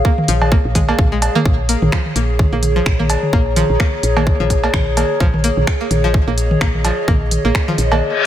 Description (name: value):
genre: minimal techno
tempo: 128 BPM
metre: 4/4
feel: swing 57% on 16ths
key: Bb minor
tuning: A4 = 439 Hz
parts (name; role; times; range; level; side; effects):
- string-like resonator pluck; riff; 0.0-7.9 s; F3 to Bb3; -23 LUFS; equal; chorus, sidechain pumping, digital delay
- electronic kick drum; drums; 0.0-7.7 s; none; -15 LUFS; equal; studio reverb
- warbly tape-like pad; texture; 0.0-8.3 s; Ab4 to Bb5; -21 LUFS; left 1 dB; chorus, built-in reverb, phaser, sidechain pumping
- electronic toms and cowbell; percussion; 0.2-8.0 s; none; -21 LUFS; right 1 dB; overdrive, studio reverb, digital delay
- woody FM bass; bass; 0.3-8.0 s; Bb1; -18 LUFS; equal; tube saturation, sidechain pumping
- minimal click drum kit; drums; 0.3-7.9 s; finger snaps, hi-hat; -24 LUFS; equal; studio reverb
- reverse cymbal; sound effects; 8.1-8.3 s; none; -15 LUFS; left 7 dB; none
room: light reverb, digital ambience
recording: none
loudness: -13 LUFS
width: side -11 dB against mid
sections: 0.0-8.3 A section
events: kick drops out 8.0; reverse cymbal 8.1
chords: 0.0 Bbm7